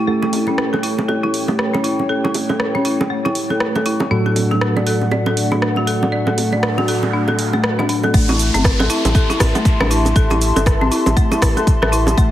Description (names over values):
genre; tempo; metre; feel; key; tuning
afro house; 119 BPM; 4/4; swing 60% on 16ths; unclear; A4 = 440 Hz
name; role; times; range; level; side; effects
dark analog pad; sustained chords; 0.0-12.3 s; A3 to C6; -23 LUFS; equal; chorus, sidechain pumping
folk marimba with hard mallets; arpeggios; 0.0-12.3 s; A3 to D5; -20 LUFS; left 2 dB; sidechain pumping, low-pass filter, dub echo
tine electric piano; stabs; 0.0-8.1 s; A2 to A4; -21 LUFS; right 1 dB; fast stereo tremolo, sidechain pumping, low-pass filter, dub echo
bongos; percussion; 0.2-12.2 s; none; -23 LUFS; right 2 dB; none
house drum kit; drums; 0.3-12.3 s; hi-hat, rim click, shaker; -23 LUFS; equal; none
noise sweep and downlifter; sound effects; 6.5-12.2 s; none; -27 LUFS; right 1 dB; none
warm sub bass; bass; 8.1-12.3 s; G1 to A1; -19 LUFS; equal; tube saturation, sidechain pumping
electronic kick drum; drums; 8.1-12.3 s; none; -15 LUFS; equal; none
room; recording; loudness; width
light reverb; heavily compressed radio sound; -14 LUFS; side -12 dB against mid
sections
0.0-8.1 A section; 8.1-12.3 B section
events
noise sweep 6.5-8.1; drop 8.1-12.3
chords
0.1 A7; 4.1 D/A; 8.1 Am7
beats
| 0.07 0.58 1.08 1.59 | 2.09 2.60 3.10 3.60 | 4.11 4.61 5.12 5.62 | 6.12 6.63 7.13 7.64 | 8.14 8.64 9.15 9.65 | 10.16 10.66 11.17 11.67 | 12.18